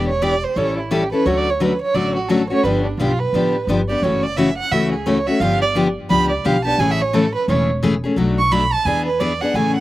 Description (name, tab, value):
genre	acoustic string swing (jazz manouche)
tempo	174 BPM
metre	4/4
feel	swing 62% on 8ths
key	A major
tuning	A4 = 440 Hz
part	warm violin	second line	0.0-9.8 s	D4 to C#6	-20 LUFS	right 4 dB	none
part	picked steel-string acoustic guitar	accompaniment	0.0-9.8 s	B2 to A4	-19 LUFS	left 2 dB	none
part	upright bass	bass	0.0-9.8 s	E1 to E2	-24 LUFS	equal	none
room	little or no reverb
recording	recorded outdoors, with no room sound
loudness	-16 LUFS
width	side -16 dB against mid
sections	0.0-9.5 A section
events	violin solo 0.0-9.8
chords	0.0 Em7; 0.6 A7; 1.3 Dmaj7; 2.6 G9; 4.0 F#m7; 5.4 G7; 6.8 Amaj7; 8.2 Bm7; 8.9 E7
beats	0.23 0.57 0.92 | 1.26 1.61 1.96 2.30 | 2.65 2.99 3.34 3.68 | 4.03 4.37 4.72 5.06 | 5.41 5.75 6.10 6.44 | 6.79 7.13 7.48 7.82 | 8.17 8.51 8.86 9.20 | 9.55